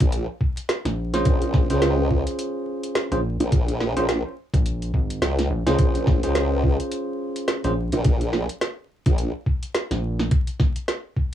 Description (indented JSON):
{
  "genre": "glitch hop",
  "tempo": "106 BPM",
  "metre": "4/4",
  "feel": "swing 58% on 16ths",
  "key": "Bb minor",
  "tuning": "A4 = 439 Hz",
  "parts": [
    { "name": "formant-sweep wobble bass", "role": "bass", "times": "0.0-9.3 s", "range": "Bb1 to Db2", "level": "-23 LUFS", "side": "equal", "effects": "chorus" },
    { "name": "drum and bass drum kit", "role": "drums", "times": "0.0-11.0 s", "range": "hi-hat, snare drum", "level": "-26 LUFS", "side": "right 1 dB", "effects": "none" },
    { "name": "electronic kick drum", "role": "drums", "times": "0.0-11.3 s", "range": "none", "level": "-20 LUFS", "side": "equal", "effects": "none" },
    { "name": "rubbery square bass", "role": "bass", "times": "0.9-10.3 s", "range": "Ab1 to Bb1", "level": "-25 LUFS", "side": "equal", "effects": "none" },
    { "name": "bell-like tine electric piano", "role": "stabs", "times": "1.1-7.7 s", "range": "Db4 to C5", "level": "-26 LUFS", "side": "right 1 dB", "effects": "sidechain pumping, analog delay" }
  ],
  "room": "little or no reverb",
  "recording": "dry, gritty hardware recording, vinyl crackle",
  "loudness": "-20 LUFS",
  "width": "side -11 dB against mid",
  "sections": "0.0-11.3 A section",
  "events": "none",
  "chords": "0.0 Bbm7"
}